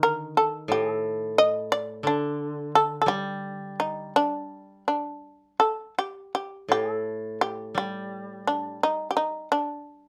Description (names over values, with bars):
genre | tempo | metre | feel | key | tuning
japanese traditional, Japanese chamber music | 85 BPM | 4/4 | uneven beats, rubato | D miyako bushi | A4 = 440 Hz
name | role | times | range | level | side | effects
shamisen | melody | 0.0-10.1 s | D4 to Eb5 | -26 LUFS | equal | none
koto | accompaniment | 0.0-9.8 s | A2 to G3 | -33 LUFS | equal | none
room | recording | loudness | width
moderate studio reverb, RT60 0.5 s | none | -27 LUFS | mono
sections
0.0-10.1 A section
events
none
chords
none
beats
| 0.01 0.70 1.38 2.06 | 2.74 3.44 4.15 4.88 | 5.61 6.34 7.06 7.77 | 8.48 9.16 9.84